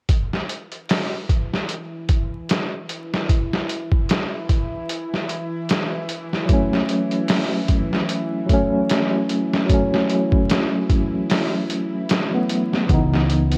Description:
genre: trip hop.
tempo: 75 BPM.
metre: 4/4.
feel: swing 56% on 16ths.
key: unclear.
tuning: A4 = 442 Hz.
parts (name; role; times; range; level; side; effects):
trip hop sampler-style drum kit; drums; 0.1-13.6 s; hi-hat, kick drum, snare drum; -23 LUFS; equal; none.
bowed-like drone; texture; 1.2-13.6 s; E3 to E4; -33 LUFS; equal; built-in reverb.
tine electric piano; accompaniment; 6.5-13.6 s; E3 to D#4; -23 LUFS; equal; tremolo, tape echo.
upright bass; bass; 12.9-13.6 s; C#2; -22 LUFS; equal; tube saturation.
room: light reverb, digital ambience.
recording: worn, warbling old tape, cassette tape, vinyl crackle, warbly pitch drift.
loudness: -21 LUFS.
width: mono.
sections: 0.1-12.9 A section.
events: none.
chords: 0.1 N.C.; 6.5 F#m; 12.9 C#m7.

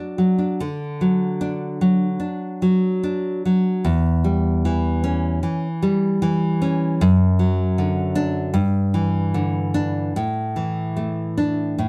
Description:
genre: romantic piece for solo classical guitar.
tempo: 75 BPM.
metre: 4/4.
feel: uneven beats, rubato.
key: D major.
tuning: A4 = 440 Hz.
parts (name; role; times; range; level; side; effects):
nylon-string guitar; solo; 0.0-11.9 s; E2 to D5; -21 LUFS; equal; none.
room: moderate studio reverb, RT60 0.8 s.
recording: dark, warm production.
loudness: -21 LUFS.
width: mono.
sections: 0.6-11.9 A section.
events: none.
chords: 0.0 D; 3.9 Em6; 7.0 D/F#; 8.5 Em7/G; 10.2 Asus4.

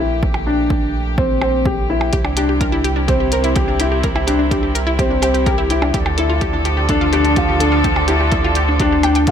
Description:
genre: piano and strings electronica.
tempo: 126 BPM.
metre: 4/4.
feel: straight.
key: unclear.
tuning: A4 = 440 Hz.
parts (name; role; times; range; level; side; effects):
warm chamber string section; sustained chords; 0.0-9.3 s; C3 to A4; -22 LUFS; equal; sidechain pumping.
dark grand piano; riff; 0.0-9.3 s; C4 to G4; -19 LUFS; left 2 dB; tape echo.
warm sub bass; bass; 0.0-9.3 s; Bb1 to D2; -20 LUFS; right 1 dB; sidechain pumping.
electronic kick drum; drums; 0.2-9.3 s; none; -21 LUFS; right 1 dB; overdrive, small room ambience.
electronic percussion blips and hi-hat; drums; 0.3-9.3 s; none; -25 LUFS; right 1 dB; small room ambience.
wide unison pluck; arpeggios; 2.1-9.3 s; D4 to G5; -22 LUFS; equal; vintage 12-bit sampler grit, sidechain pumping, tape echo.
room: light reverb.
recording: none.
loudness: -14 LUFS.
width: side -8 dB against mid.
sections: 0.0-9.3 A section.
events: fade-in on string section 0.0-9.3.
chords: 0.0 Gmadd9/Bb; 2.1 C; 5.9 Dm.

